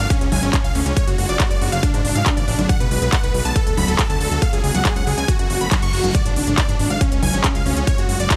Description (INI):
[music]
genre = uplifting trance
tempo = 139 BPM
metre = 4/4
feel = straight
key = unclear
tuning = A4 = 438 Hz
[part]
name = supersaw chords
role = melody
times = 0.0-8.4 s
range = C#4 to C#6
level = -25 LUFS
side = equal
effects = sidechain pumping, delay
[part]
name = fat analog bass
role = bass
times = 0.0-8.3 s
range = D1 to G#2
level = -25 LUFS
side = equal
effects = sidechain pumping
[part]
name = big-room dance drum kit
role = drums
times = 0.0-8.4 s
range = congas, handclaps, hi-hat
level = -26 LUFS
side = equal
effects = sidechain pumping on hats, sidechain pumping on perc
[part]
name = electronic kick drum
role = drums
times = 0.1-8.4 s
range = none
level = -22 LUFS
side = equal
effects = none
[part]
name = reverse cymbal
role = sound effects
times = 5.7-6.1 s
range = none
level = -36 LUFS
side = equal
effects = none
[sound]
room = digital ambience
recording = none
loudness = -18 LUFS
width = mono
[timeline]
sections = 0.0-8.4 A section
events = reverse cymbal 5.7-6.1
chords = 0.1 C#; 1.0 F#m; 1.8 G#dim; 2.7 Bm; 3.6 D; 4.4 C#; 5.3 F#m; 6.1 G#dim; 7.0 C#